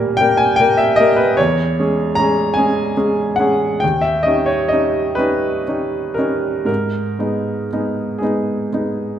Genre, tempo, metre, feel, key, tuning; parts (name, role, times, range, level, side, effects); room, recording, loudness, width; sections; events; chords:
classical, romantic nocturne for solo piano; 39-51 BPM (dotted quarters); 12/8; rubato; A4 = 439 Hz
clear baby grand piano; solo; 0.0-9.2 s; D#2 to B5; -15 LUFS; equal
wet recital hall reverb, RT60 1.4 s; -15 LUFS; side -10 dB against mid
0.0-9.2 A section
0.0 D#; 1.4 C#m/E; 3.8 D#7; 6.7 G#m